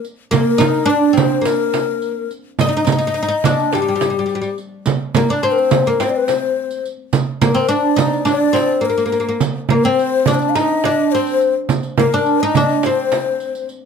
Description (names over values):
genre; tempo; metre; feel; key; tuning
Arabic maqam ensemble; 106 BPM; 4/4; straight; unclear; A4 = 440 Hz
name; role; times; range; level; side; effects
breathy ney; second line; 0.0-13.7 s; G4 to F5; -20 LUFS; left 8 dB; none
riq; percussion; 0.0-13.8 s; none; -28 LUFS; right 3 dB; none
oud; melody; 0.3-13.7 s; G3 to Eb4; -17 LUFS; equal; none
frame drum; percussion; 0.3-13.2 s; none; -18 LUFS; right 7 dB; none
room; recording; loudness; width
light reverb; none; -14 LUFS; side -6 dB against mid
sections
0.0-4.9 A section; 4.9-13.9 B section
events
none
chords
none